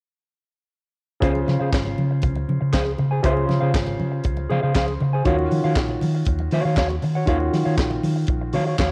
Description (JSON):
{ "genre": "disco", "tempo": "119 BPM", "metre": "4/4", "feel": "straight", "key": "Db major", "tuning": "A4 = 439 Hz", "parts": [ { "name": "mellow electric guitar", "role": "accompaniment", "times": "1.2-8.9 s", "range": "Gb4 to Ab5", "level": "-29 LUFS", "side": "equal", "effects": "cassette tape" }, { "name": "warm concert grand piano", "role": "accompaniment", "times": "1.2-8.9 s", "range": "Db3 to C5", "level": "-28 LUFS", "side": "equal", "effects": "cassette tape" }, { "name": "hollow-body short-scale fingered electric bass", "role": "bass", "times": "1.2-8.9 s", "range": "Ab1 to Eb3", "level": "-25 LUFS", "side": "equal", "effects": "none" }, { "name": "tight funk drum kit", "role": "drums", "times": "1.2-8.9 s", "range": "handclaps, hi-hat, kick drum, snare drum", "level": "-26 LUFS", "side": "equal", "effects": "cassette tape" }, { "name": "congas", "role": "percussion", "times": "1.4-8.9 s", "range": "none", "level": "-35 LUFS", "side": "equal", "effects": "none" } ], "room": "light reverb, small room ambience", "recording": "home recording on cassette", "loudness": "-21 LUFS", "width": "mono", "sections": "1.2-8.9 A section", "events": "none", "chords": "1.2 Dbmaj7; 5.3 Ebm9", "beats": "| 1.22 1.73 2.23 2.73 | 3.24 3.74 4.25 4.75 | 5.26 5.76 6.27 6.77 | 7.28 7.78 8.29 8.79" }